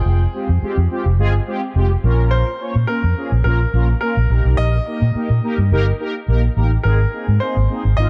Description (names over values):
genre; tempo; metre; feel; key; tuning
dance-pop; 106 BPM; 4/4; straight; unclear; A4 = 440 Hz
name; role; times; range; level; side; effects
clear concert grand piano; melody; 0.0-8.1 s; Ab4 to Eb5; -28 LUFS; equal; tape echo
mellow synth brass; accompaniment; 0.0-8.1 s; Ab3 to G5; -26 LUFS; equal; chorus, phaser
vintage muted fingered electric bass; bass; 0.1-8.1 s; F1 to Bb2; -17 LUFS; equal; none
room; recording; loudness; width
small room ambience; dark, warm production; -17 LUFS; mono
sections
0.0-8.1 A section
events
none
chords
0.0 Fmadd9; 2.0 Bbm; 4.3 Eb/Bb; 6.9 Abadd9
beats
| 0.06 0.62 1.19 1.76 | 2.32 2.89 3.46 4.02 | 4.59 5.15 5.72 6.29 | 6.85 7.42 7.98